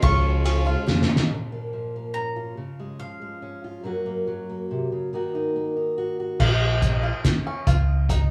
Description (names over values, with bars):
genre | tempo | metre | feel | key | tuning
indie folk with a building arrangement | 141 BPM | 3/4 | straight | unclear | A4 = 439 Hz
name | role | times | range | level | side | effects
bowl-back mandolin | melody | 0.0-3.6 s | F5 to Db6 | -32 LUFS | equal | none
picked steel-string acoustic guitar | accompaniment | 0.0-1.3 s | Db3 to F4 | -34 LUFS | equal | none
warm upright piano | accompaniment | 0.0-1.3 s | Db2 to Db5 | -38 LUFS | equal | none
warm chamber string section | sustained chords | 0.0-1.3 s | Db3 to F4 | -38 LUFS | equal | none
bluegrass banjo | arpeggios | 0.0-1.3, 6.4-8.3 s | Db4 to F4 | -34 LUFS | equal | none
picked electric bass | bass | 0.0-1.1, 6.4-8.3 s | Bb1 to F2 | -24 LUFS | equal | none
cloth-damped thuddy drum kit | drums | 0.0-1.3, 6.4-8.2 s | crash cymbal, hi-hat, kick drum, ride cymbal, snare drum | -25 LUFS | equal | none
fingerpicked steel-string acoustic guitar | accompaniment | 1.3-6.4 s | Gb2 to Gb4 | -30 LUFS | equal | none
room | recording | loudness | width
moderate studio reverb, RT60 0.5 s | band playing live in one room, small room ambience | -24 LUFS | mono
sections
0.0-1.3 A section; 1.3-6.4 B section; 6.4-8.3 C section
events
drum fill 0.9-1.3, 6.4-8.3; build-up 6.4-8.3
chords
0.0 Db; 1.3 Bbm; 2.6 Db; 3.8 Gb; 5.1 Ebm; 6.4 Bbm; 7.7 Db